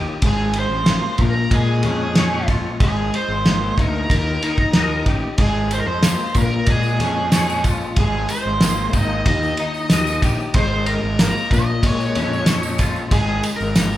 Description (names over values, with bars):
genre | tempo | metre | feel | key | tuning
psychedelic rock | 93 BPM | 4/4 | straight | unclear | A4 = 440 Hz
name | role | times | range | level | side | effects
twangy electric guitar | riff | 0.0-14.0 s | Bb2 to Eb5 | -23 LUFS | left 3 dB | rotary speaker
fuzz fingered electric bass | bass | 0.0-14.0 s | Ab1 to Bb2 | -24 LUFS | equal | overdrive
cloth-damped thuddy drum kit | drums | 0.2-13.9 s | kick drum, ride cymbal, snare drum | -19 LUFS | equal | none
octave-fuzz lead guitar | melody | 0.3-14.0 s | Ab4 to Eb5 | -24 LUFS | right 1 dB | wah, distortion
tambourine | percussion | 5.7-14.0 s | none | -35 LUFS | right 6 dB | none
room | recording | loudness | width
moderate large studio reverb, RT60 1.5 s | band playing live in one room | -16 LUFS | side -14 dB against mid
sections
0.0-14.0 A section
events
none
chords
0.2 Abadd9; 1.2 Bbm7; 2.8 Abadd9; 4.1 Eb; 5.4 Abadd9; 6.4 Bbm7; 8.0 Abadd9; 9.3 Eb; 10.5 Absus2; 11.5 Bbm7; 13.1 Absus2